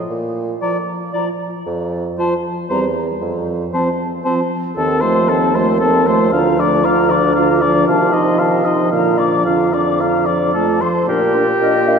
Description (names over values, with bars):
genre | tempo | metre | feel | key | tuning
quick classical-period movement for wind quintet | 115 BPM | 3/4 | straight | Bb major | A4 = 436 Hz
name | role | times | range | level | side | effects
mellow bassoon | bass | 0.1-12.0 s | D2 to C3 | -20 LUFS | right 2 dB | none
mellow concert flute | melody | 0.6-12.0 s | Bb4 to D6 | -21 LUFS | left 4 dB | none
warm oboe | second line | 0.6-12.0 s | G4 to F5 | -19 LUFS | left 2 dB | none
mellow French horn | accompaniment | 0.6-12.0 s | D3 to D4 | -22 LUFS | equal | none
warm clarinet | accompaniment | 0.6-12.0 s | A3 to Bb4 | -20 LUFS | right 5 dB | none
room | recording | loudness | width
wet church reverb, RT60 3.0 s | none | -14 LUFS | side -6 dB against mid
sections
0.0-11.1 A section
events
none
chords
0.1 Bb; 1.7 N.C.; 2.7 C/E; 3.2 F5; 4.8 F7/Eb; 6.3 Bb/D; 7.9 F7/C; 8.9 Bb; 9.5 Bb/F; 10.5 F; 11.1 Bb